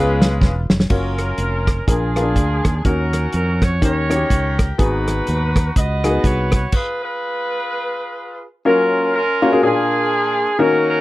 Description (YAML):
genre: uptempo gospel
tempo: 124 BPM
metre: 4/4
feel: swing 59% on 8ths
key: F# major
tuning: A4 = 440 Hz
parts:
  - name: edgy saxophone section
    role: melody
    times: 0.0-11.0 s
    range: C#4 to D#5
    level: -21 LUFS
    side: right 1 dB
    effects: none
  - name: clear upright piano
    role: accompaniment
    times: 0.0-11.0 s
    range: G#2 to C#5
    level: -19 LUFS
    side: left 2 dB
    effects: none
  - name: fingered electric bass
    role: bass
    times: 0.0-6.7 s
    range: E1 to E#2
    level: -20 LUFS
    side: equal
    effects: none
  - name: warm soul drum kit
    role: drums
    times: 0.2-6.9 s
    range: crash cymbal, hi-hat, kick drum, rim click, snare drum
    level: -17 LUFS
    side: equal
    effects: none
room: little or no reverb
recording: dry, close 1970s-style studio recording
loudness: -15 LUFS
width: side -17 dB against mid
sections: 0.9-8.7 A section; 8.7-11.0 B section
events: drum fill 0.4-0.9; stop 6.7-8.7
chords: 0.0 C#7; 0.9 F#maj7; 1.9 A#7; 2.8 D#m7; 3.8 D#7; 4.8 G#m7; 6.7 Fdim; 8.7 F#maj7; 9.6 A#7